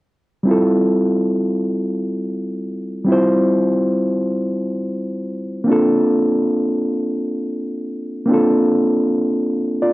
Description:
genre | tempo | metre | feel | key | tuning
R&B | 46 BPM (dotted quarters) | 6/8 | straight | F major | A4 = 440 Hz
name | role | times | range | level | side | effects
overdriven reed electric piano | accompaniment | 0.4-9.9 s | G3 to D5 | -16 LUFS | equal | slapback echo
room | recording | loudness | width
light reverb | recorded outdoors, with no room sound | -16 LUFS | side -19 dB against mid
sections
0.5-9.9 A section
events
none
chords
0.5 Fmaj9; 5.7 Bbmaj9

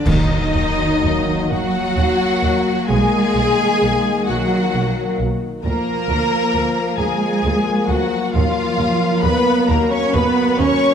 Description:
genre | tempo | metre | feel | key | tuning
classical, slow romantic movement for symphony orchestra | 44 BPM (dotted quarters) | 6/8 | rubato | Eb minor | A4 = 440 Hz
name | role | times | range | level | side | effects
rich studio violin section | melody | 0.0-10.9 s | Eb5 to Db6 | -24 LUFS | left 4 dB | none
rich studio violin section | second line | 0.0-10.9 s | Eb4 to Db5 | -23 LUFS | left 2 dB | none
warm studio viola section | accompaniment | 0.0-10.9 s | Eb4 to Db5 | -24 LUFS | right 1 dB | none
mellow French horn section | sustained chords | 0.0-10.9 s | D#3 to Bb3 | -23 LUFS | left 5 dB | none
rich studio cello section | bass | 0.0-10.9 s | Eb3 to Db4 | -21 LUFS | right 3 dB | none
clear studio double bass section | bass | 0.1-10.7 s | B1 to Eb2 | -22 LUFS | right 3 dB | none
clash cymbals and concert bass drum | percussion | 0.1-1.9 s | none | -24 LUFS | equal | none
timpani | percussion | 0.1-1.5 s | Eb3 | -23 LUFS | right 2 dB | none
room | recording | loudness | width
moderate concert hall reverb, RT60 2.3 s | dark, warm production | -15 LUFS | side -8 dB against mid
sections
0.1-10.9 A section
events
band accent 0.1-1.0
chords
0.1 Ebm; 2.9 Bmaj7; 5.6 Bb/D; 8.3 Ebm

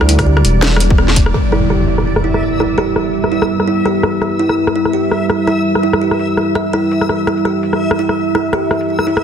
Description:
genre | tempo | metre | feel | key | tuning
half-time drum and bass | 167 BPM | 4/4 | swing 55% on 16ths, half-time | E minor | A4 = 435 Hz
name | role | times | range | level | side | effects
deep dark ambient pad | sustained chords | 0.0-9.2 s | G3 to E5 | -18 LUFS | left 1 dB | chorus, built-in reverb, sidechain pumping
dark detuned saw bass | bass | 0.0-1.3 s | E1 to D2 | -12 LUFS | equal | none
drum and bass drum kit | drums | 0.0-9.2 s | crash cymbal, hi-hat, rim click, snare drum | -18 LUFS | left 1 dB | soft clipping on snare, low-pass filter on snare, low-pass filter on hats, low-pass filter on cymbals, low-pass filter on room
backwards swelling texture | texture | 0.0-9.2 s | D5 to E5 | -24 LUFS | left 2 dB | built-in reverb
kalimba | arpeggios | 0.1-9.2 s | B3 to E5 | -18 LUFS | right 5 dB | low-pass filter, digital delay
electronic kick drum | drums | 0.2-1.2 s | none | -13 LUFS | equal | overdrive
impact | sound effects | 1.3-2.8 s | none | -19 LUFS | equal | none
room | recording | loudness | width
light reverb | dense, heavily limited modern master | -12 LUFS | side -8 dB against mid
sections
0.0-1.3 A section; 1.3-9.2 B section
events
drop 0.0-1.3; impact 1.3-2.8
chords
0.0 Em

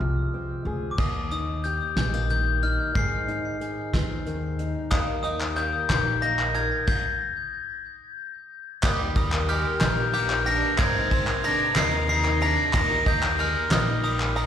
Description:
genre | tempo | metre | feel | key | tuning
indie folk with a building arrangement | 61 BPM (dotted quarters) | 6/8 | straight | Eb major | A4 = 440 Hz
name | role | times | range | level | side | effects
glockenspiel with brass mallets | melody | 0.0-14.5 s | D6 to C7 | -27 LUFS | left 2 dB | slapback echo, tape echo
fingerpicked old ladder-braced acoustic guitar | accompaniment | 0.0-6.9 s | Eb2 to Ab4 | -33 LUFS | left 2 dB | slapback echo
upright bass | bass | 0.0-14.5 s | Ab1 to Eb2 | -28 LUFS | equal | none
soft brush drum kit | drums | 1.0-14.5 s | crash cymbal, hi-hat, kick drum, ride cymbal, snare drum | -28 LUFS | equal | none
picked old ladder-braced acoustic guitar | accompaniment | 4.9-14.5 s | Eb3 to Bb4 | -32 LUFS | left 5 dB | slapback echo
warm brass ensemble | sustained chords | 4.9-14.5 s | C3 to G4 | -38 LUFS | right 1 dB | none
bluegrass banjo | arpeggios | 4.9-14.5 s | Bb3 to Bb5 | -34 LUFS | right 6 dB | slapback echo
group handclap | percussion | 4.9-14.4 s | none | -31 LUFS | left 3 dB | slapback echo
bright fiddle | second line | 8.8-14.5 s | G3 to Eb4 | -32 LUFS | right 2 dB | slapback echo
room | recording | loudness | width
little or no reverb | live gig heard through the venue's PA, recital hall reverb | -22 LUFS | side -9 dB against mid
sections
1.0-8.8 A section; 8.8-14.5 B section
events
stop 6.9-8.8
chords
0.0 Fm; 1.0 Eb; 3.0 Ab; 4.9 Eb; 10.8 Abadd9; 12.7 Eb

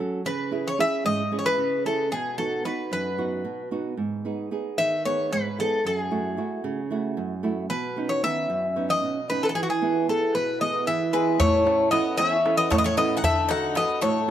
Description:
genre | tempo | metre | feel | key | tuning
greek folk, Greek bouzouki band | 226 BPM (eighths) | 7/8 | straight | unclear | A4 = 441 Hz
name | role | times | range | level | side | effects
flamenco guitar | accompaniment | 0.0-14.3 s | E2 to A4 | -27 LUFS | right 4 dB | none
Greek bouzouki | melody | 0.3-14.3 s | F#4 to F#5 | -24 LUFS | left 2 dB | none
Greek bouzouki | second line | 11.1-14.3 s | G#3 to D#4 | -28 LUFS | left 6 dB | none
darbuka | percussion | 11.4-14.1 s | none | -29 LUFS | equal | none
room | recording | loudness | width
light reverb | none | -22 LUFS | side -10 dB against mid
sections
0.0-11.4 A section; 11.4-14.3 B section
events
none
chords
0.3 C#m; 2.1 B; 4.0 G#m; 5.8 F#m7; 7.7 Badd9; 9.6 E; 11.4 A; 13.2 D

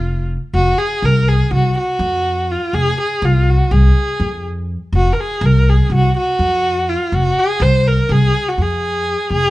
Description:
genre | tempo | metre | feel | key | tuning
Turkish makam ensemble | 246 BPM (eighths) | 9/8 | straight | F makam kurdi | A4 = 440 Hz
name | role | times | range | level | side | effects
warm kamancheh | melody | 0.0-9.5 s | F4 to C5 | -17 LUFS | equal | none
upright bass | bass | 0.0-9.5 s | F1 to F2 | -15 LUFS | equal | none
room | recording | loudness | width
light reverb | band playing live in one room, nothing above 10.5 kHz | -13 LUFS | side -17 dB against mid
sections
0.5-9.5 A section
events
none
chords
none

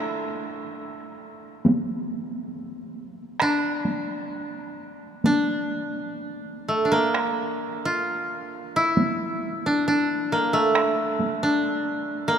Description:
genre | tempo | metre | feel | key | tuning
japanese traditional, Japanese chamber music | 62-70 BPM | 4/4 | rubato | D hirajoshi | A4 = 440 Hz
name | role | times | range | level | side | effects
koto | melody | 0.0-12.4 s | A3 to F4 | -24 LUFS | equal | none
taiko ensemble | percussion | 1.6-11.4 s | none | -27 LUFS | right 1 dB | none
room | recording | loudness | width
wet cathedral reverb, RT60 5.3 s | none | -22 LUFS | side -8 dB against mid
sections
0.0-7.1 A section; 7.1-12.4 B section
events
none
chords
none

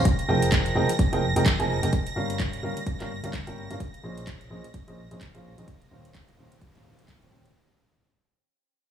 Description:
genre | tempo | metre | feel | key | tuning
piano house | 128 BPM | 4/4 | swing 59% on 16ths | unclear | A4 = 440 Hz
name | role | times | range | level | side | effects
analog string pad | sustained chords | 0.0-7.6 s | Bb6 | -34 LUFS | right 3 dB | ensemble chorus, sidechain pumping
clear upright piano | riff | 0.0-7.4 s | Bb2 to Ab5 | -28 LUFS | right 1 dB | sidechain pumping, low-pass filter, tape echo
solid FM bass | bass | 0.0-7.5 s | Eb1 to G2 | -29 LUFS | right 1 dB | sidechain pumping
electronic kick drum | drums | 0.1-7.2 s | none | -25 LUFS | equal | small room ambience
house drum kit | drums | 0.1-7.5 s | handclaps, hi-hat | -33 LUFS | right 1 dB | small room ambience
room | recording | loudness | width
digital ambience | studio ambience | -23 LUFS | side -9 dB against mid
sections
0.0-7.6 A section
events
fade-out 0.0-7.6; filter sweep on upright piano 0.0-7.6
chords
0.1 Fm11; 1.9 Gm7b5; 3.8 Bbm11; 5.7 Eb13

